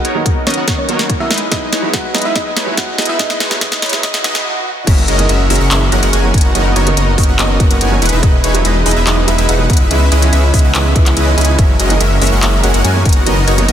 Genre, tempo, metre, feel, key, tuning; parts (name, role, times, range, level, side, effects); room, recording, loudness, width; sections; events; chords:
future bass; 143 BPM; 4/4; half-time; B major; A4 = 440 Hz
thumb-piano-like synth pluck; melody; 0.0-4.4 s; C#4 to F#5; -23 LUFS; equal; chorus, cassette tape, sidechain pumping, dub echo
supersaw stab; riff; 0.0-13.7 s; G#3 to G#5; -16 LUFS; equal; sidechain pumping, low-pass filter, tape echo
trap drum kit; drums; 0.0-13.7 s; crash cymbal, handclaps, hi-hat, snare drum; -17 LUFS; left 1 dB; small room ambience
clear concert grand piano; accompaniment; 0.1-13.7 s; D#3 to E4; -21 LUFS; right 5 dB; vintage 12-bit sampler grit, sidechain pumping, tape echo
electronic kick drum; drums; 0.3-13.1 s; -13 LUFS; equal; small room ambience
swell; sound effects; 4.2-4.9 s; -26 LUFS; right 3 dB
wide detuned saw bass; bass; 4.9-13.7 s; E1 to F#2; -14 LUFS; equal; chorus, sidechain pumping
light reverb; dense, heavily limited modern master, high-pass filter; -10 LUFS; side -10 dB against mid
0.0-4.9 A section; 4.9-13.7 B section
build-up 0.0-4.9; drum fill 0.0-4.5; filter sweep on synth pluck 0.0-4.9; filter sweep 0.0-4.9; swell 4.2-4.9; stop 4.5-4.9; drop 4.9-13.7
0.0 Bmaj7; 1.3 Emaj7; 4.9 F#9; 6.3 Bmaj7/F#; 8.0 Emaj7; 9.9 C#m7; 11.6 F#9; 13.1 Bmaj7/F#